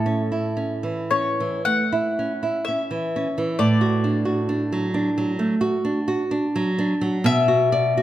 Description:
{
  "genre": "romantic duo for mandolin and classical guitar",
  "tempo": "53-66 BPM",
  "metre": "4/4",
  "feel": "rubato",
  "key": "unclear",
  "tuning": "A4 = 440 Hz",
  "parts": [
    { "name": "mandolin", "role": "melody", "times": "0.0-8.0 s", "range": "A4 to F#5", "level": "-24 LUFS", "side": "left 5 dB", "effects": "none" },
    { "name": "nylon-string guitar", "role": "accompaniment", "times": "0.0-8.0 s", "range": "A2 to D5", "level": "-21 LUFS", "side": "right 2 dB", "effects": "none" }
  ],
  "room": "moderate recital hall reverb, RT60 1.5 s",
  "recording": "none",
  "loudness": "-20 LUFS",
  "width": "side -13 dB against mid",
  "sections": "0.0-8.0 A section",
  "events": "none",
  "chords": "0.0 A; 3.6 D/A; 7.3 Bm"
}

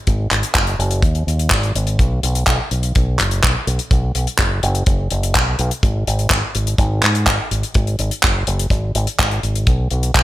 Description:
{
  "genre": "italo disco",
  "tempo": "125 BPM",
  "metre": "4/4",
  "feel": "straight",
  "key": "B major",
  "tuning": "A4 = 442 Hz",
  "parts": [
    { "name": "fingered electric bass with an envelope filter", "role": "bass", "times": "0.1-10.2 s", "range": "F#1 to G#2", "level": "-19 LUFS", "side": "equal", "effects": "tube saturation" },
    { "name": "damped 70s drum kit", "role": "drums", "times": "0.1-10.2 s", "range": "handclaps, hi-hat", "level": "-19 LUFS", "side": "left 1 dB", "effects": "studio reverb, gated reverb" },
    { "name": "kick drum", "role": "drums", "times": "0.1-10.2 s", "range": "none", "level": "-17 LUFS", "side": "equal", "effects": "studio reverb" }
  ],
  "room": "light reverb",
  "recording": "bright 1980s-style digital production",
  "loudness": "-15 LUFS",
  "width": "side -15 dB against mid",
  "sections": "0.0-10.2 A section",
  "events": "none",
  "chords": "none"
}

